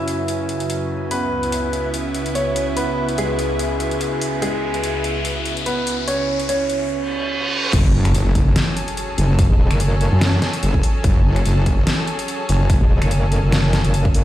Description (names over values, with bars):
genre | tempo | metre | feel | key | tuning
heavy wobble dubstep | 145 BPM | 4/4 | swing 55% on 16ths, half-time | F# minor | A4 = 439 Hz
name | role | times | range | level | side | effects
clear concert grand piano | melody | 0.0-7.7 s | G#3 to E5 | -23 LUFS | right 1 dB | low-pass filter, tape echo
lush unison pad | sustained chords | 0.0-14.2 s | C#2 to G#5 | -26 LUFS | equal | chorus, sidechain pumping
warbly tape-like pad | texture | 0.0-6.9 s | C#4 to G#5 | -28 LUFS | right 1 dB | chorus, built-in reverb, sidechain pumping
dubstep drum kit | drums | 0.1-14.2 s | crash cymbal, finger snaps, hi-hat, snare drum | -24 LUFS | left 1 dB | overdrive, high-pass filter on hats, high-pass filter on cymbals, high-pass filter on snare, high-pass filter on room
riser, reverse cymbal and impact | sound effects | 3.1-9.4 s | none | -26 LUFS | equal | none
wobble bass | bass | 7.7-12.8 s | F#1 to F#2 | -16 LUFS | equal | chorus, overdrive
electronic kick drum | drums | 7.7-14.1 s | none | -17 LUFS | equal | overdrive
metallic wobble bass | bass | 9.5-10.1, 12.8-14.2 s | E1 to F#1 | -16 LUFS | equal | chorus, overdrive
room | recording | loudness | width
light reverb, digital ambience | played on a big sound system in a bare room, stone room reverb | -16 LUFS | side -13 dB against mid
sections
0.0-7.7 A section; 7.7-14.2 B section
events
build-up 0.0-7.7; riser 3.1-6.9; reverse cymbal 6.9-7.7; drop 7.7-14.2; impact 7.7-9.4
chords
0.0 F#sus2; 1.1 C#m7; 7.7 F#madd9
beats
0.28 0.70 | 1.11 1.52 1.94 2.35 | 2.77 3.18 3.59 4.01 | 4.42 4.83 5.25 5.66 | 6.08 6.49 6.90 7.32 | 7.73 8.15 8.56 8.97 | 9.39 9.80 10.21 10.63 | 11.04 11.46 11.87 12.28 | 12.70 13.11 13.53 13.94